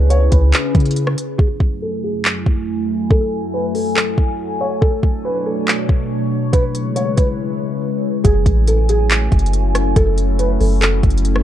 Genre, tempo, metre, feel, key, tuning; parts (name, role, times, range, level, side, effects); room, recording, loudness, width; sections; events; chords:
hip hop, atmospheric cloud-rap; 140 BPM; 4/4; half-time; A4 = 440 Hz
felt-muted upright piano; melody; 0.0-11.4 s; G#4 to C#5; -22 LUFS; equal; low-pass filter, slapback echo
warbly tape-like pad; sustained chords; 0.0-11.4 s; F#2 to G#5; -21 LUFS; left 1 dB; chorus, built-in reverb, phaser, sidechain pumping, low-pass filter
soft 808-style bass; bass; 0.0-1.2, 8.2-11.4 s; F#1 to C#3; -15 LUFS; equal
smooth R&B drum kit; drums; 0.1-11.4 s; handclaps, hi-hat, kick drum, rim click; -16 LUFS; equal; overdrive
little or no reverb; dark, warm production; -14 LUFS; side -11 dB against mid
0.0-1.4 A section; 1.4-8.2 B section; 8.2-11.4 C section
filter sweep 1.4-8.2; break 7.4-8.2
0.0 C#m7; 1.4 F#m7; 4.8 Bm9; 6.5 C#m7; 8.2 F#m7